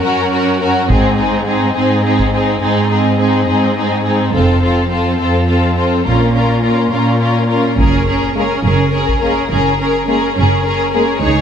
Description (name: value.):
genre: cinematic, epic orchestral film score.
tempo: 70 BPM (dotted quarters).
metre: 12/8.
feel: straight.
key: unclear.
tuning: A4 = 441 Hz.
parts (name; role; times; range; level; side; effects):
warm symphonic violin section; melody; 0.0-11.4 s; Ab4 to Db5; -19 LUFS; left 4 dB; none.
warm symphonic violin section; second line; 0.0-11.4 s; Eb4 to Ab4; -19 LUFS; left 2 dB; none.
warm symphonic viola section; accompaniment; 0.0-11.4 s; C4 to Eb4; -18 LUFS; right 2 dB; none.
warm symphonic cello section; bass; 0.0-11.4 s; Db2 to Bb2; -17 LUFS; right 1 dB; none.
warm studio double bass section; bass; 0.9-11.4 s; F1 to Db2; -18 LUFS; right 3 dB; none.
solo taiko drums; drums; 0.9-2.5, 7.8-9.3 s; none; -18 LUFS; equal; none.
warm French horn section; sustained chords; 8.4-11.1 s; Ab3 to Bb3; -22 LUFS; left 3 dB; none.
room: moderate scoring stage reverb, RT60 1.8 s.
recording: none.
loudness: -12 LUFS.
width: side -8 dB against mid.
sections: 0.0-7.8 A section; 7.8-11.4 B section.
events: none.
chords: 0.0 Gb; 0.9 Ab; 4.3 F; 6.1 Bbm; 7.8 Gbadd9.